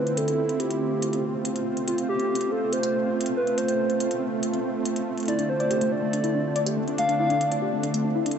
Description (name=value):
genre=IDM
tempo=141 BPM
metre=4/4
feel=straight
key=D minor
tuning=A4 = 440 Hz
part: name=warbly nostalgic lead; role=melody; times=0.0-7.6 s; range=F4 to F5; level=-27 LUFS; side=equal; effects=chorus, tape echo
part: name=warm analog pad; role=sustained chords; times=0.0-8.4 s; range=D3 to F4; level=-27 LUFS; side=right 2 dB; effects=chorus
part: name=flickering grainy texture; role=texture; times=0.0-8.4 s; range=C4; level=-34 LUFS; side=equal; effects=built-in reverb
part: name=electronic hi-hat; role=drums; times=0.1-8.4 s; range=none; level=-35 LUFS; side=equal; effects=none
part: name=warbly dusty pluck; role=arpeggios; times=5.3-8.4 s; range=A3 to D5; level=-28 LUFS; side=left 5 dB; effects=wide subtle chorus, tape echo
room=moderate huge ambient reverb, RT60 4.5 s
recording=nothing above 8.0 kHz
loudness=-23 LUFS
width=side -7 dB against mid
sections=0.0-8.4 A section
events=none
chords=0.0 Dm7; 1.9 F; 5.3 Dm7